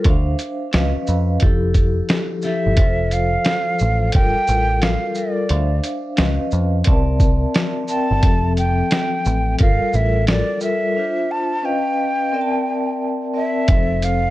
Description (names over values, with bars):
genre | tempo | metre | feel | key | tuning
lo-fi hip hop | 88 BPM | 4/4 | swing 63% on 16ths | F major | A4 = 440 Hz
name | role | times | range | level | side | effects
vibraphone with medium mallets | accompaniment | 0.0-14.3 s | F3 to A5 | -22 LUFS | left 1 dB | low-pass filter
lo-fi sampler-style drum kit | drums | 0.0-14.2 s | hi-hat, kick drum, shaker, snare drum | -18 LUFS | equal | none
deep dub picked electric bass | bass | 0.1-14.3 s | F1 to F2 | -19 LUFS | equal | none
breathy hollow jazz flute | melody | 2.4-14.3 s | D5 to A5 | -22 LUFS | right 1 dB | low-pass filter
room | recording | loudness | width
little or no reverb | cassette tape | -16 LUFS | side -16 dB against mid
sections
0.0-2.8 A section; 2.8-14.3 B section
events
break 11.0-13.7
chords
0.0 Dm9; 0.7 Db9; 1.4 Fmaj9; 2.8 F; 4.1 Gm9; 5.5 Dm9; 6.2 Db9; 6.9 C13; 8.2 Fmaj7; 9.6 Gm9; 11.0 Dm9; 11.6 Db9; 12.3 C13; 13.7 F